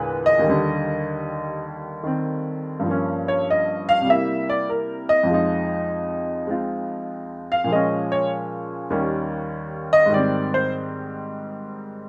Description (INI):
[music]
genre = solo jazz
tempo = 99 BPM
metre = 4/4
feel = swing 68% on 8ths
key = Eb major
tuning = A4 = 440 Hz
[part]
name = clear upright piano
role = solo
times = 0.0-12.1 s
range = Eb2 to F5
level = -23 LUFS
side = equal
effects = none
[sound]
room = light reverb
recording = none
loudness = -23 LUFS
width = mono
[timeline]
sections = 0.0-5.3 A section; 5.3-12.1 A section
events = upright piano solo 0.0-12.1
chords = 0.4 Ebmaj7; 2.9 Gm7b5; 4.1 C7; 5.3 Fm7; 7.7 Bbm7; 8.9 Eb7; 10.1 Abmaj7